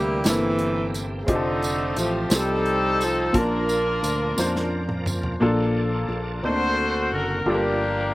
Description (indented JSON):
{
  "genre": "slow gospel",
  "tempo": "58 BPM (dotted quarters)",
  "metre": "6/8",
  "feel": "straight",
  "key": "Bb major",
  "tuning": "A4 = 440 Hz",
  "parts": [
    { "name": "clear horn section", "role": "melody", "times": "0.0-8.1 s", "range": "G3 to C5", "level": "-25 LUFS", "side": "left 2 dB", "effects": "slapback echo" },
    { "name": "warm tenor saxophone", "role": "melody", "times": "0.0-5.1 s", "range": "Db3 to Bb3", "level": "-26 LUFS", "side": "right 2 dB", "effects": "none" },
    { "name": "warm concert grand piano", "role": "accompaniment", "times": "0.0-8.1 s", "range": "G2 to A5", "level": "-26 LUFS", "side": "left 1 dB", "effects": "none" },
    { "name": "bright tonewheel organ", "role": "sustained chords", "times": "0.0-8.1 s", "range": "D3 to Eb5", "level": "-36 LUFS", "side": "right 2 dB", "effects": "slow rotary speaker, chorus vibrato" },
    { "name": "fingered electric bass", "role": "bass", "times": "0.0-8.1 s", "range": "F1 to F2", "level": "-29 LUFS", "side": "equal", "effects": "none" },
    { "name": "natural country drum kit", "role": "drums", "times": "0.2-5.4 s", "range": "hi-hat, kick drum, snare drum, toms", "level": "-26 LUFS", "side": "equal", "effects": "none" },
    { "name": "tambourine", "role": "percussion", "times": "0.3-5.4 s", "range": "none", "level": "-32 LUFS", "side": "right 2 dB", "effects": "none" }
  ],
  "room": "little or no reverb",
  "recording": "recorded outdoors, with no room sound",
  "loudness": "-20 LUFS",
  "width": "side -18 dB against mid",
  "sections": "0.0-5.4 A section; 5.4-8.1 B section",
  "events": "drum fill 4.4-5.4",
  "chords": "0.0 C7; 1.3 F7; 3.3 Bbmaj7; 6.4 D7b13; 7.5 Gm7"
}